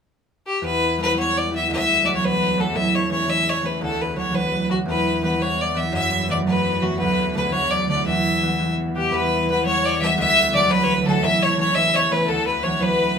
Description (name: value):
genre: celtic folk, Celtic jig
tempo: 113 BPM (dotted quarters)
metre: 6/8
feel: straight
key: E dorian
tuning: A4 = 440 Hz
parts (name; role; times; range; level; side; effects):
- bright fiddle; melody; 0.5-13.2 s; F#4 to E5; -20 LUFS; left 2 dB; none
- concert harp; accompaniment; 0.6-13.2 s; D2 to E4; -23 LUFS; right 2 dB; none
- rich studio string section; drone; 0.6-13.2 s; E2 to E3; -32 LUFS; left 1 dB; none
- clear fiddle; second line; 9.0-13.2 s; G4 to E5; -24 LUFS; left 3 dB; none
room: moderate studio reverb, RT60 0.5 s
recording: minimal, uncompressed stereo recording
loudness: -18 LUFS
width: side -6 dB against mid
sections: 0.6-9.1 A section; 9.1-13.2 A section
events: none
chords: 0.0 N.C.; 0.6 Em; 1.7 D; 2.7 A; 3.8 Dadd9; 4.9 Em; 5.9 F#m7; 7.0 D; 8.1 Em; 10.2 D; 11.2 A; 12.3 Dadd9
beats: 0.07 | 0.60 1.14 | 1.67 2.20 | 2.74 3.27 | 3.80 4.33 | 4.87 5.40 | 5.93 6.46 | 6.99 7.52 | 8.05 8.58 | 9.11 9.64 | 10.17 10.70 | 11.23 11.76 | 12.28 12.81